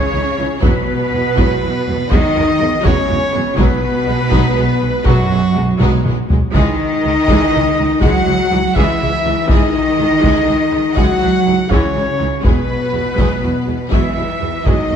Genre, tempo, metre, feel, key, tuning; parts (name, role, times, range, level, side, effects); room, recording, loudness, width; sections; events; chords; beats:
cinematic, epic orchestral film score; 81 BPM (dotted quarters); 12/8; straight; C# minor; A4 = 441 Hz
warm symphonic violin section; melody; 0.0-15.0 s; F#4 to F#5; -26 LUFS; left 5 dB
large flute ensemble; second line; 0.0-15.0 s; F#4 to F#5; -24 LUFS; left 1 dB
rich symphonic violin section; second line; 0.0-15.0 s; G#3 to G#4; -27 LUFS; left 3 dB
rich symphonic viola section; accompaniment; 0.0-15.0 s; E3 to C#4; -22 LUFS; right 2 dB
warm French horn section; sustained chords; 0.0-15.0 s; F#3 to F#4; -20 LUFS; left 5 dB
mellow trumpet; stabs; 0.0-15.0 s; F#4 to F#5; -22 LUFS; right 1 dB
rich symphonic cello section; bass; 0.0-15.0 s; F#2 to F#3; -21 LUFS; right 4 dB
clear symphonic double bass section; bass; 0.1-15.0 s; B1 to E2; -20 LUFS; right 3 dB
solo taiko drums; drums; 0.6-15.0 s; -18 LUFS; left 1 dB
moderate scoring stage reverb, RT60 2.1 s; dark, warm production; -12 LUFS; side -8 dB against mid
0.0-15.0 A section
drum fill 5.8-6.5
0.0 C#madd9; 0.6 Eadd9; 3.6 B6; 6.5 C#madd9; 12.4 Eadd9
| 0.62 1.36 2.10 2.84 | 3.58 4.32 5.06 5.80 | 6.54 7.28 8.02 8.76 | 9.49 10.23 10.97 11.71 | 12.45 13.19 13.92 14.66